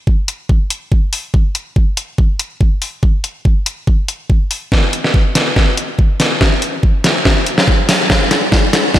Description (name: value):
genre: dubstep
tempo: 142 BPM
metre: 4/4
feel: swing 54% on 16ths, half-time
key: none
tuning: none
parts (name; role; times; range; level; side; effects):
- electronic kick drum; drums; 0.1-9.0 s; none; -12 LUFS; equal; overdrive
- dubstep drum kit; drums; 0.3-9.0 s; hi-hat, snare drum; -14 LUFS; equal; none
room: moderate lush hall reverb, RT60 1.8 s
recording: dreamy mix soaked in reverb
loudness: -12 LUFS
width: side -13 dB against mid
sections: 0.0-9.0 A section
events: build-up 0.0-9.0; drum fill 4.7-9.0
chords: none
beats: 0.07 0.49 0.92 | 1.34 1.76 2.18 2.61 | 3.03 3.45 3.87 4.30 | 4.72 5.14 5.56 5.99 | 6.41 6.83 7.25 7.68 | 8.10 8.52 8.94